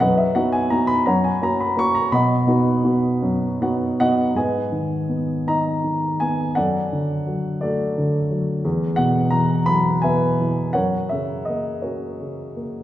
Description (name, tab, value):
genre	classical, lyrical solo piano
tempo	51-59 BPM (dotted quarters)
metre	6/8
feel	rubato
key	B major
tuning	A4 = 442 Hz
part	dark baby grand piano	solo	0.0-12.8 s	E2 to C#6	-18 LUFS	equal	none
room	wet concert hall reverb, RT60 2.3 s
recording	recorded in a church or concert hall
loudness	-18 LUFS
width	side -13 dB against mid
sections	0.0-4.4 A section; 4.4-12.8 B section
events	grand piano fill 3.2-4.4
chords	0.0 B/F#; 1.1 F#; 2.1 B; 4.4 G#m; 6.6 D/F#; 8.6 Esus2; 10.8 F#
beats	| 0.02 1.06 | 2.12 3.23 | 4.36 5.47 | 6.56 7.62 | 8.65 9.68 | 10.75 11.84